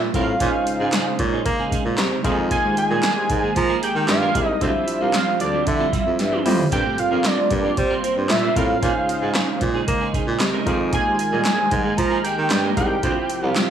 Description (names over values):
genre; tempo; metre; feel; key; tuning
early-eighties boogie funk; 114 BPM; 4/4; straight; unclear; A4 = 440 Hz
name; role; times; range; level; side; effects
brassy analog pad; sustained chords; 0.0-13.7 s; C3 to E5; -28 LUFS; equal; chorus
clean electric guitar; riff; 0.0-13.7 s; G3 to C5; -29 LUFS; right 7 dB; ensemble chorus
warm baritone saxophone; bass; 0.0-13.5 s; C2 to Bb3; -23 LUFS; right 2 dB; none
barky tine electric piano; accompaniment; 0.1-13.7 s; C4 to Bb5; -27 LUFS; left 2 dB; overdrive
electro analog drum machine; drums; 0.1-13.7 s; handclaps, hi-hat, kick drum, snare drum, toms; -24 LUFS; equal; overdrive
fat analog lead; melody; 0.2-13.7 s; C5 to Bb5; -22 LUFS; right 1 dB; chorus, slapback echo
mellow synth brass; second line; 2.6-3.4, 6.9-7.6, 11.1-11.8 s; F3 to C5; -31 LUFS; equal; chorus
room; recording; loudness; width
light reverb, digital ambience; studio reverb; -18 LUFS; side -9 dB against mid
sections
0.0-13.7 A section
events
tine electric piano fill 0.9-2.5; drum fill 6.2-6.7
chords
0.4 Bbm11; 2.2 Fm11; 4.6 Dm11; 6.7 Gm11; 8.8 Bbm11; 10.7 Fm11; 13.0 Dm11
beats
| 0.40 0.93 1.46 1.98 | 2.51 3.04 3.56 4.09 | 4.61 5.14 5.67 6.19 | 6.72 7.25 7.77 8.30 | 8.82 9.35 9.88 10.40 | 10.93 11.46 11.98 12.51 | 13.04 13.56